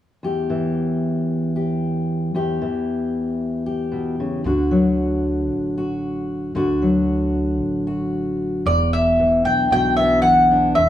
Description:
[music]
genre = folk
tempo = 114 BPM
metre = 4/4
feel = straight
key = E minor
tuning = A4 = 440 Hz
[part]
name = fingerpicked steel-string acoustic guitar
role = accompaniment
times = 0.2-10.9 s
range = E2 to G4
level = -20 LUFS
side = left 1 dB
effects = none
[part]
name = upright bass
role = bass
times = 4.4-10.9 s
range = E1 to D2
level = -26 LUFS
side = equal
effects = none
[part]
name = mandolin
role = melody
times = 8.7-10.9 s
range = D5 to G5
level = -15 LUFS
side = left 1 dB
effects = plate reverb
[sound]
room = moderate studio reverb, RT60 0.8 s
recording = none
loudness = -18 LUFS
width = side -12 dB against mid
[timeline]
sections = 0.2-8.7 A section; 8.7-10.9 B section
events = none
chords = 0.2 Em; 4.5 D; 8.7 E5

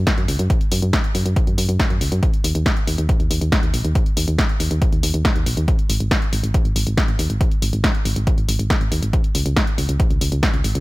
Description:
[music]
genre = uplifting trance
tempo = 139 BPM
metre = 4/4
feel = straight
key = unclear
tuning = A4 = 440 Hz
[part]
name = solid FM bass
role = bass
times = 0.0-10.8 s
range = G#1 to F#2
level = -20 LUFS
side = equal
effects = sidechain pumping
[part]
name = electronic kick drum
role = drums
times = 0.1-10.5 s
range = none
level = -19 LUFS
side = equal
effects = none
[part]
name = punchy analog drum machine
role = drums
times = 0.1-10.8 s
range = hi-hat, snare drum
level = -23 LUFS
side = equal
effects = none
[sound]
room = little or no reverb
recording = none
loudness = -16 LUFS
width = side -20 dB against mid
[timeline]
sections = 0.0-10.8 A section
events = none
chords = none

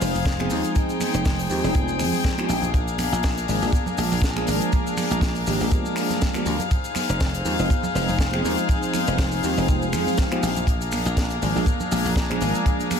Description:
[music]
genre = nu-disco, nu disco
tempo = 121 BPM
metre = 4/4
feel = swing 55% on 16ths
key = F dorian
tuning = A4 = 440 Hz
[part]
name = bell-like tine electric piano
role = accompaniment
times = 0.0-13.0 s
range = F3 to Ab4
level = -26 LUFS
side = right 1 dB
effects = ensemble chorus, sidechain pumping, tape echo
[part]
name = warm chamber string section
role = sustained chords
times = 0.0-13.0 s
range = D4 to G5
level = -26 LUFS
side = left 4 dB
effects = sidechain pumping
[part]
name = dry thumbed slap bass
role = bass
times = 0.0-12.5 s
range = F1 to F2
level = -26 LUFS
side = equal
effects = none
[part]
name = tight funk drum kit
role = drums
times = 0.0-13.0 s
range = finger snaps, hi-hat, shaker, snare drum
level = -30 LUFS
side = left 2 dB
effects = none
[part]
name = congas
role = percussion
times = 0.1-13.0 s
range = none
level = -33 LUFS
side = right 4 dB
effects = none
[part]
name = kick drum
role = drums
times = 0.3-12.8 s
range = none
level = -22 LUFS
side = equal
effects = none
[sound]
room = moderate lush hall reverb, RT60 1.6 s, studio reverb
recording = dreamy mix soaked in reverb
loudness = -20 LUFS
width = side -7 dB against mid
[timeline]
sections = 0.0-13.0 A section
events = none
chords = 0.0 Fm7; 2.7 Bb7; 6.7 Fm7; 10.7 Bb7

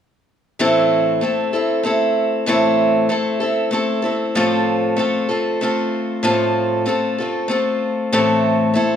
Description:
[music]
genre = rock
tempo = 96 BPM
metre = 3/4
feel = straight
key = unclear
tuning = A4 = 441 Hz
[part]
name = picked acoustic archtop guitar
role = solo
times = 0.6-9.0 s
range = A2 to A4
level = -16 LUFS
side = equal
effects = none
[sound]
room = wet large studio reverb, RT60 1.4 s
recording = band playing live in one room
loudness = -16 LUFS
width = side -8 dB against mid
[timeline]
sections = 0.6-8.1 A section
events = none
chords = 0.6 Am; 4.4 F/A; 8.1 Am

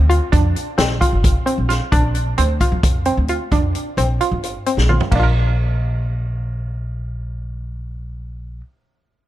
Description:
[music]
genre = progressive instrumental, band music in an uneven meter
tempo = 263 BPM (eighths)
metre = 7/8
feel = straight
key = Bb major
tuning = A4 = 445 Hz
[part]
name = analog pluck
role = arpeggios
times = 0.0-8.7 s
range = Bb3 to Bb4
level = -21 LUFS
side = right 1 dB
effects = chorus, tape echo
[part]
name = upright bass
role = bass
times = 0.0-8.6 s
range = G1 to F2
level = -19 LUFS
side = equal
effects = none
[part]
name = vintage drum kit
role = drums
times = 0.1-5.2 s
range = crash cymbal, hi-hat, kick drum, snare drum, toms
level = -19 LUFS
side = equal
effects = none
[sound]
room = small room reverb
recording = dark, warm production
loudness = -16 LUFS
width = side -14 dB against mid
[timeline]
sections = 0.0-5.1 A section; 5.1-8.3 B section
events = drum fill 4.8-5.1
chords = 0.0 Bbadd9; 5.1 Bb

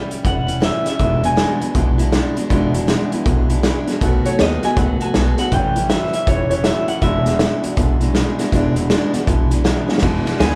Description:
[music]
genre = rockabilly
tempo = 160 BPM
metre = 4/4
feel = swing 64% on 8ths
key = E mixolydian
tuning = A4 = 440 Hz
[part]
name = electric guitar through a small old amp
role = melody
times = 0.0-2.0, 4.3-10.6 s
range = G#4 to G#5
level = -24 LUFS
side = equal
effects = none
[part]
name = picked steel-string acoustic guitar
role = accompaniment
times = 0.0-10.6 s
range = E2 to F#4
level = -25 LUFS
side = equal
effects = none
[part]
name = upright bass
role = bass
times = 0.1-10.6 s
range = E1 to E2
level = -24 LUFS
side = equal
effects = none
[part]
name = vintage drum kit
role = drums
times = 0.1-10.5 s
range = hi-hat, kick drum, ride cymbal, snare drum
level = -22 LUFS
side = equal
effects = none
[part]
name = electric guitar through a small old amp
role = riff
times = 1.0-10.6 s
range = E2 to G#3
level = -27 LUFS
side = equal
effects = none
[sound]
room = moderate large studio reverb, RT60 0.9 s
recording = band playing live in one room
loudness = -17 LUFS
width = mono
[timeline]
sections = 0.0-10.0 A section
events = drum fill 9.8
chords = 0.0 A7; 1.0 E7; 4.0 B7; 5.5 A7; 7.0 E7

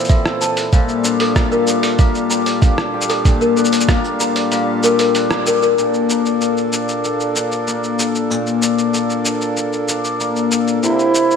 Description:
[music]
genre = folktronica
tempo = 95 BPM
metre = 4/4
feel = straight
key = Bb lydian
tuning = A4 = 442 Hz
[part]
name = hand-pumped harmonium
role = sustained chords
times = 0.0-11.4 s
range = Bb2 to C5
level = -22 LUFS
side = right 2 dB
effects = none
[part]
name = cimbalom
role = arpeggios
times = 0.0-11.4 s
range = Bb2 to A4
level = -18 LUFS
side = left 5 dB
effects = low-pass filter, tape echo
[part]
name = lo-fi sampler-style drum kit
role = drums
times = 0.0-11.4 s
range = hi-hat, rim click, shaker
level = -22 LUFS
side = equal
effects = none
[part]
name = toy piano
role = second line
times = 0.1-5.7 s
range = A4 to Bb5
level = -20 LUFS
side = left 3 dB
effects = digital delay
[part]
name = electronic kick drum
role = drums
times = 0.1-4.0 s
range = none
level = -13 LUFS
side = right 1 dB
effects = none
[part]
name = clear clarinet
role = melody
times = 10.8-11.4 s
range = E4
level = -15 LUFS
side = right 3 dB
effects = vintage 12-bit sampler grit
[sound]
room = light reverb, studio reverb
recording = none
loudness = -14 LUFS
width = side -6 dB against mid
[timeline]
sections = 0.0-5.8 A section; 5.8-11.4 B section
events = kick drops out 4.5-5.8; band accent 5.3-5.6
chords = 0.0 Am/Bb; 0.7 Gm7/Bb; 5.8 Bbmaj7; 10.8 C7

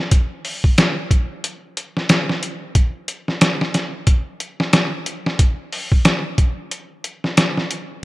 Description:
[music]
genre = trip hop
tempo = 91 BPM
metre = 4/4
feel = swing 59% on 16ths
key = none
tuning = none
[part]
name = trip hop sampler-style drum kit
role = drums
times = 0.1-7.9 s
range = hi-hat, kick drum, snare drum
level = -16 LUFS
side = equal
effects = none
[sound]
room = light reverb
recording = rough home demo mix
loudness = -17 LUFS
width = side -19 dB against mid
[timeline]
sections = 0.0-8.0 A section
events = none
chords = none

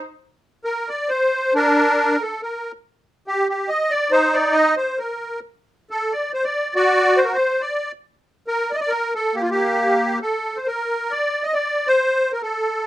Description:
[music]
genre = musette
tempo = 138 BPM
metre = 3/4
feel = swing 54% on 8ths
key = unclear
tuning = A4 = 440 Hz
[part]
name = musette accordion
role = solo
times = 0.6-12.9 s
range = Bb3 to Eb5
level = -18 LUFS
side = equal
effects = none
[sound]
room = light reverb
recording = close, detailed microphones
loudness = -18 LUFS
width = side -14 dB against mid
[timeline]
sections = 0.2-10.7 A section; 10.7-12.9 B section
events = none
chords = none

